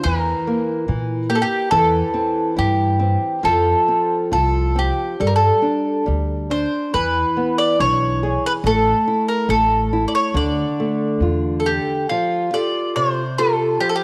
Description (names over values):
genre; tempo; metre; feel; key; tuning
fado-style ballad; 70 BPM; 2/4; rubato; D minor; A4 = 440 Hz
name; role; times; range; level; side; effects
mandolin; melody; 0.0-14.0 s; F4 to D5; -21 LUFS; equal; cassette tape
nylon-string guitar; accompaniment; 0.0-14.0 s; C3 to A4; -24 LUFS; equal; cassette tape
upright bass; bass; 0.1-11.8 s; A1 to Bb2; -24 LUFS; equal; tube saturation
room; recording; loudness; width
light reverb, small room ambience; home recording on cassette; -19 LUFS; mono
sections
0.0-12.1 A section; 12.1-14.0 B section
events
none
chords
0.1 Edim; 1.7 C/E; 3.5 F; 5.2 Gsus2; 6.9 E7; 8.6 A5; 10.3 Dmadd9; 12.1 Fadd9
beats
| 0.06 0.89 | 1.73 2.59 | 3.45 4.32 | 5.20 6.08 | 6.94 7.80 | 8.64 9.49 | 10.34 11.21 | 12.09 12.96 | 13.81